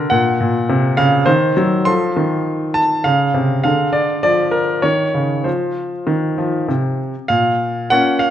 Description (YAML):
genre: classical-period piano sonatina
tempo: 100 BPM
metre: 3/4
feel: rubato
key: Bb minor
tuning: A4 = 444 Hz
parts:
  - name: clear baby grand piano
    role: solo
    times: 0.0-8.3 s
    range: Bb2 to C6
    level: -14 LUFS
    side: equal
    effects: none
room: moderate recital hall reverb, RT60 1.3 s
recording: none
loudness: -14 LUFS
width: side -10 dB against mid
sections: 0.0-7.3 A section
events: none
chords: 0.1 Gb/Bb; 1.3 Cdim/Eb; 1.9 F7; 3.1 Dbmaj7; 3.7 Ddim; 4.8 Dbsus2; 5.5 F5; 7.3 Bbm